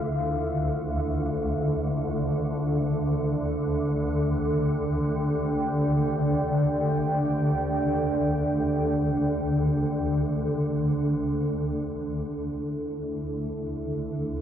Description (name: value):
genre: dark ambient drone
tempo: free time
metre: none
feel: none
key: D minor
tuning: A4 = 438 Hz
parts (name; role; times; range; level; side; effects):
- deep dark ambient pad; sustained chords; 0.0-14.4 s; D4 to G5; -28 LUFS; right 1 dB; chorus, built-in reverb
- swarming drone; drone; 0.0-14.4 s; D2 to D3; -26 LUFS; equal; built-in reverb
- bronze singing bowl; texture; 0.0-11.0 s; none; barely audible; none; none
room: wet huge ambient reverb, RT60 8.7 s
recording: worn, warbling old tape, cassette tape, warbly pitch drift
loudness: -24 LUFS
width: side -9 dB against mid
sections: 0.0-11.0 A section; 11.0-14.4 A section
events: none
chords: 0.0 Dm; 11.0 D5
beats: free time